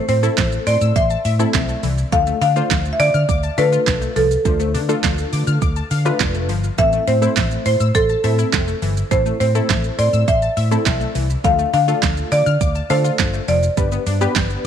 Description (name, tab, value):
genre	dance-pop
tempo	103 BPM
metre	4/4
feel	straight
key	D dorian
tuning	A4 = 441 Hz
part	marimba with medium mallets	melody	0.0-14.3 s	A4 to F5	-20 LUFS	equal	tape echo
part	funky polysynth comp	accompaniment	0.0-14.7 s	A3 to C5	-25 LUFS	equal	chorus, sidechain pumping
part	wide unison pluck	arpeggios	0.0-14.5 s	E3 to F6	-27 LUFS	left 14 dB	sidechain pumping, tape echo
part	vintage muted fingered electric bass	bass	0.1-14.7 s	F1 to D3	-20 LUFS	equal	sidechain pumping
part	deep house drum kit	drums	0.1-14.6 s	handclaps, hi-hat, kick drum, shaker, snare drum	-21 LUFS	right 4 dB	none
room	light reverb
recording	1960s-style stereo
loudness	-15 LUFS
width	side -9 dB against mid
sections	0.0-14.7 A section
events	none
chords	0.0 Am; 2.1 Dm; 6.8 Am; 11.4 Dm; 13.8 G